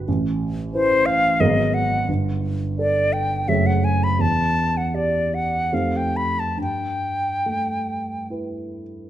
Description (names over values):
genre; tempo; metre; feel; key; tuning
classical, impressionist duo for flute and grand piano; 67-92 BPM; 3/4; rubato; unclear; A4 = 440 Hz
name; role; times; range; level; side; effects
dark baby grand piano; accompaniment; 0.0-9.1 s; F#1 to D5; -22 LUFS; right 2 dB; none
bright concert flute; melody; 0.7-8.3 s; C5 to B5; -21 LUFS; left 1 dB; none
room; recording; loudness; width
moderate recital hall reverb, RT60 1.3 s; close, detailed microphones; -19 LUFS; side -12 dB against mid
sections
0.0-9.1 A section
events
none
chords
0.1 Asus2; 1.4 Abm9; 2.1 Gsus2; 3.5 F#madd9; 4.2 Em7; 5.7 F9; 6.6 G69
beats
| 0.07 0.72 1.40 | 2.08 2.78 3.48 | 4.19 4.93 5.71 | 6.56 7.45 8.30